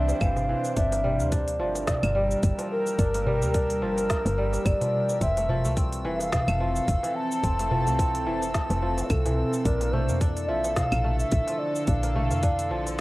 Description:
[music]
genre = organic downtempo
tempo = 108 BPM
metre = 4/4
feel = swing 56% on 16ths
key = G dorian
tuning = A4 = 440 Hz
[part]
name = breathy mellow ney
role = melody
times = 0.0-13.0 s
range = A4 to A5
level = -28 LUFS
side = equal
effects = vintage 12-bit sampler grit, cassette tape, analog delay
[part]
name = bowed-like drone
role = sustained chords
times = 0.0-13.0 s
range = D3 to C5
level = -34 LUFS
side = equal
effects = built-in reverb, sidechain pumping, cassette tape
[part]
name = kora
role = arpeggios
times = 0.0-13.0 s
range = E3 to D4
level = -32 LUFS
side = equal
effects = vintage 12-bit sampler grit, cassette tape, analog delay
[part]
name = woody FM bass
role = bass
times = 0.0-13.0 s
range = F1 to F2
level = -28 LUFS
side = equal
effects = none
[part]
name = drifting glass-harmonics texture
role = texture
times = 0.0-13.0 s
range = E3 to E6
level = -40 LUFS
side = equal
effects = chorus, built-in reverb, cassette tape
[part]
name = organic electronic drum kit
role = drums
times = 0.1-13.0 s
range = claves, hi-hat, shaker, snare drum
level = -34 LUFS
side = equal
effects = none
[part]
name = darbuka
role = percussion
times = 0.1-13.0 s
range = none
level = -32 LUFS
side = equal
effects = none
[part]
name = electronic kick drum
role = drums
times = 0.2-12.6 s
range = none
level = -26 LUFS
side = equal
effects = none
[sound]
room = moderate small room reverb, RT60 0.6 s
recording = home recording on cassette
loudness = -23 LUFS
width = side -19 dB against mid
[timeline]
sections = 0.0-13.0 A section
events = none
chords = 0.0 Cadd9; 0.8 Gm7; 5.2 Fmaj7; 9.7 Bbmaj7

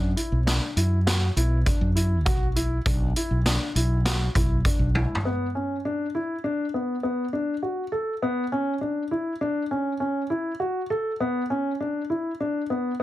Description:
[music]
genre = progressive instrumental, band music in an uneven meter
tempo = 101 BPM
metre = 5/4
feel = straight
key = B minor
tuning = A4 = 440 Hz
[part]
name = dark grand piano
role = arpeggios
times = 0.0-13.0 s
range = B3 to A4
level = -26 LUFS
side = left 1 dB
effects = plate reverb
[part]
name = fretless electric bass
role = bass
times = 0.0-5.1 s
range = B1 to F#2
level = -23 LUFS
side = equal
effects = none
[part]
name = street-band drum kit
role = drums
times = 0.2-5.3 s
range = hi-hat, kick drum, snare drum, toms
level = -25 LUFS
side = equal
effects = none
[sound]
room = light reverb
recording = dense, heavily limited modern master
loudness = -23 LUFS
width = side -14 dB against mid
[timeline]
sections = 0.0-5.2 A section; 5.2-13.0 B section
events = drum fill 4.9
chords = 0.0 Bm

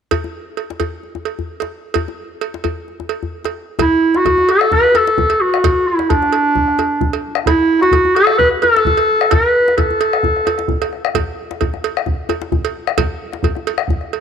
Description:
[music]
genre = west african traditional, West African drum ensemble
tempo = 130 BPM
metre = 4/4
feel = swing 54% on 16ths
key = unclear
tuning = A4 = 436 Hz
[part]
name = cowbell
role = percussion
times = 0.1-14.2 s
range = none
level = -23 LUFS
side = right 10 dB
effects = none
[part]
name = djembe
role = percussion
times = 0.1-14.0 s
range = none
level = -24 LUFS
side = left 6 dB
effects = none
[part]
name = warm clarinet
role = melody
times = 3.8-10.9 s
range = D4 to B4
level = -12 LUFS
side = equal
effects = slapback echo
[part]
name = bombo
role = percussion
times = 3.8-14.1 s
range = none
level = -20 LUFS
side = equal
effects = none
[sound]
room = moderate plate reverb, RT60 2.8 s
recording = 1960s-style stereo with parts hard left and right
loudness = -13 LUFS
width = side -7 dB against mid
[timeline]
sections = 0.1-3.8 A section; 3.8-14.2 B section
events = none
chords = none

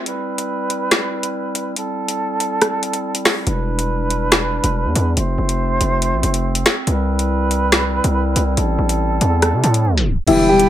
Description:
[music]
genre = hip hop, drill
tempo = 141 BPM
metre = 4/4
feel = half-time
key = unclear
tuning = A4 = 440 Hz
[part]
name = dark woodwind section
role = sustained chords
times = 0.0-10.7 s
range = G3 to B5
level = -21 LUFS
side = right 2 dB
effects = none
[part]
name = drill drum kit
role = drums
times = 0.1-10.7 s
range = crash cymbal, finger snaps, hi-hat, rim click, snare drum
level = -18 LUFS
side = equal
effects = overdrive
[part]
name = distorted 808-style bass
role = bass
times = 3.5-10.7 s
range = E1 to C3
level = -18 LUFS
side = equal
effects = distortion
[part]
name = dark baby grand piano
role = melody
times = 10.3-10.7 s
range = E3 to G4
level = -12 LUFS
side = left 2 dB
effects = low-pass filter
[part]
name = breathy concert flute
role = second line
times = 10.3-10.7 s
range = G5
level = -19 LUFS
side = right 5 dB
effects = none
[part]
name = muted felt-like synth keys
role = accompaniment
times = 10.3-10.7 s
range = D3 to G4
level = -17 LUFS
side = left 3 dB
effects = chorus, low-pass filter
[sound]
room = light reverb, small room ambience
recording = tape stop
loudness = -16 LUFS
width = side -12 dB against mid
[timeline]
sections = 0.0-10.3 A section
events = break 0.0-3.5; tape stop 9.8-10.3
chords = 0.1 Cmaj7; 1.8 Am7; 3.5 Em7; 5.2 F; 6.9 Cmaj7; 8.6 Am7

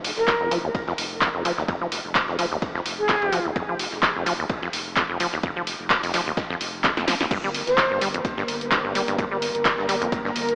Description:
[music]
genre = acid house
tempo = 128 BPM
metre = 4/4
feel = swing 55% on 16ths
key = G minor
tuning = A4 = 444 Hz
[part]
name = saturated sub bass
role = bass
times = 0.0-10.6 s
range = Eb1 to G1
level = -39 LUFS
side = equal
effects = sidechain pumping
[part]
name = dusty soul sampler-style drum kit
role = drums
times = 0.0-10.5 s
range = ride cymbal, snare drum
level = -34 LUFS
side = equal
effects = high-pass filter on cymbals, high-pass filter on snare, dub echo
[part]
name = punchy analog drum machine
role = drums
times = 0.0-10.6 s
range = crash cymbal, handclaps, hi-hat, snare drum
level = -24 LUFS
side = equal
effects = dub echo
[part]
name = bright reedy concert flute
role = melody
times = 0.2-3.5, 7.7-8.0 s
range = Ab4 to C5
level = -27 LUFS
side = equal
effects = dub echo
[part]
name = electronic kick drum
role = drums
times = 0.3-10.2 s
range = none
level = -28 LUFS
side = equal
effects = none
[part]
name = acid bass, saw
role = riff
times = 0.4-10.3 s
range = Eb2 to G3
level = -27 LUFS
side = equal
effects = tube saturation, sidechain pumping, dub echo
[part]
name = string machine, full ensemble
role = sustained chords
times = 7.3-10.6 s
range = Bb4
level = -28 LUFS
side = equal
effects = ensemble chorus, sidechain pumping
[sound]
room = moderate plate reverb, RT60 2.2 s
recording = echo-heavy mix, AM radio sound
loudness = -21 LUFS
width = side -32 dB against mid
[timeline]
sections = 0.0-10.6 A section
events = filter sweep on acid bass 0.0-10.6; drum fill 7.0-7.3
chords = 0.0 N.C.; 7.3 Gm

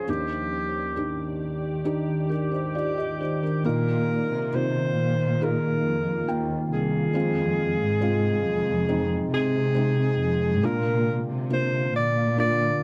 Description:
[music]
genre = pop ballad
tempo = 69 BPM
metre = 4/4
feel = straight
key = unclear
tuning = A4 = 441 Hz
[part]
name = mellow alto saxophone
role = melody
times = 0.0-12.8 s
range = G4 to D5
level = -29 LUFS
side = equal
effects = slapback echo
[part]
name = felt-muted upright piano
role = accompaniment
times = 0.0-12.8 s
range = Eb2 to G5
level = -32 LUFS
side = equal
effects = none
[part]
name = glassy FM pad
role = sustained chords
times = 0.0-12.8 s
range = C3 to G5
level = -31 LUFS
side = equal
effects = ensemble chorus, built-in reverb
[part]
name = dark studio cello section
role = bass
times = 3.6-12.8 s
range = C2 to C3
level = -29 LUFS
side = equal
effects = none
[sound]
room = light reverb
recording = dry, close 1970s-style studio recording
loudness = -25 LUFS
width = mono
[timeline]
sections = 0.0-3.6 A section; 3.6-12.8 B section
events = none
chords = 0.1 Ebmaj7; 3.6 Bbsus4; 7.2 Fm; 10.6 Bb

